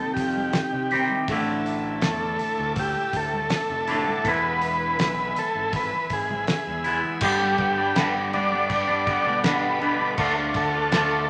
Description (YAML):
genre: psychedelic rock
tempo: 81 BPM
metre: 4/4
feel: straight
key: G mixolydian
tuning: A4 = 440 Hz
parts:
  - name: combo organ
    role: melody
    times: 0.0-11.3 s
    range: G4 to D5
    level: -27 LUFS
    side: equal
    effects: none
  - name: bright tonewheel organ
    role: sustained chords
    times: 0.0-11.3 s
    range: Eb4 to E6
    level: -39 LUFS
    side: equal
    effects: slow rotary speaker, overdrive, chorus vibrato
  - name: twangy electric guitar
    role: riff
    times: 0.0-11.3 s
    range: G2 to G4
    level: -28 LUFS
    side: equal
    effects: phaser
  - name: fuzz fingered electric bass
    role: bass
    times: 0.2-11.3 s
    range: E1 to C3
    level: -36 LUFS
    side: equal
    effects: overdrive
  - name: cloth-damped thuddy drum kit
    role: drums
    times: 0.2-11.1 s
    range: crash cymbal, hi-hat, kick drum, snare drum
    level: -31 LUFS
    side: equal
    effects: none
  - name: congas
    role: percussion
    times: 0.4-10.0 s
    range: none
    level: -44 LUFS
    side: equal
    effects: none
room: wet large studio reverb, RT60 1.3 s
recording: none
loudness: -24 LUFS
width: mono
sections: 0.0-7.2 A section; 7.2-11.3 B section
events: drum fill 6.7-7.2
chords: 0.0 Cm; 1.3 Asus4; 4.3 E; 7.2 G; 10.2 Dm